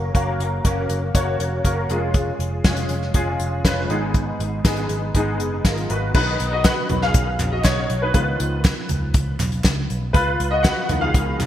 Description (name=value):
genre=piano-driven pop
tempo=120 BPM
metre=4/4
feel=straight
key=unclear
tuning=A4 = 440 Hz
part: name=clear baby grand piano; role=accompaniment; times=0.0-11.5 s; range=G#2 to F#5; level=-23 LUFS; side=left 1 dB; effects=ensemble chorus
part: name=vintage muted picked electric bass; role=bass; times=0.0-11.5 s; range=E#1 to C#2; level=-24 LUFS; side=equal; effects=none
part: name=unplugged drum kit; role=drums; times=0.1-11.5 s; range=crash cymbal, hi-hat, kick drum, snare drum, toms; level=-20 LUFS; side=equal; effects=none
part: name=group handclap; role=percussion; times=6.6-11.5 s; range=none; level=-34 LUFS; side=right 3 dB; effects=none
room=moderate lush hall reverb, RT60 1.6 s, small room ambience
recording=bright 1980s-style digital production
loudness=-18 LUFS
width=side -11 dB against mid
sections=0.0-6.1 A section; 6.1-11.5 B section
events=grand piano solo 6.1-11.5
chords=0.0 F#; 1.9 C#/E#; 3.9 G#m; 6.1 B; 8.1 C#7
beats=| 0.15 0.65 1.15 1.65 | 2.15 2.65 3.15 3.65 | 4.15 4.65 5.15 5.65 | 6.15 6.65 7.15 7.65 | 8.15 8.65 9.15 9.65 | 10.15 10.64 11.14